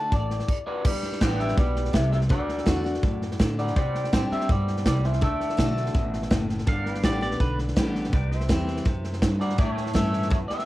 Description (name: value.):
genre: honky-tonk and classic country.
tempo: 165 BPM.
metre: 4/4.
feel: straight.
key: G major.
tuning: A4 = 439 Hz.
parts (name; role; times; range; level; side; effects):
electric guitar through a small old amp; melody; 0.0-6.5, 9.4-10.7 s; E4 to A5; -29 LUFS; left 1 dB; cassette tape.
picked steel-string acoustic guitar; accompaniment; 0.0-10.7 s; G2 to G4; -30 LUFS; left 2 dB; none.
pedal steel guitar; sustained chords; 0.0-10.7 s; A4 to A5; -39 LUFS; right 2 dB; none.
upright bass; bass; 0.1-10.5 s; F#1 to C3; -28 LUFS; equal; none.
natural country drum kit; drums; 0.1-10.6 s; crash cymbal, hi-hat, kick drum, snare drum; -25 LUFS; equal; cassette tape.
pedal steel guitar; second line; 6.7-7.6 s; B4 to F5; -32 LUFS; right 2 dB; none.
room: light reverb, studio ambience.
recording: home recording on cassette.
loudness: -22 LUFS.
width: side -16 dB against mid.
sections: 0.9-10.7 A section.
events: none.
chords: 0.0 D; 0.9 G; 2.3 D; 3.8 Csus2; 5.2 D; 6.7 Gadd9; 8.1 C; 9.6 A.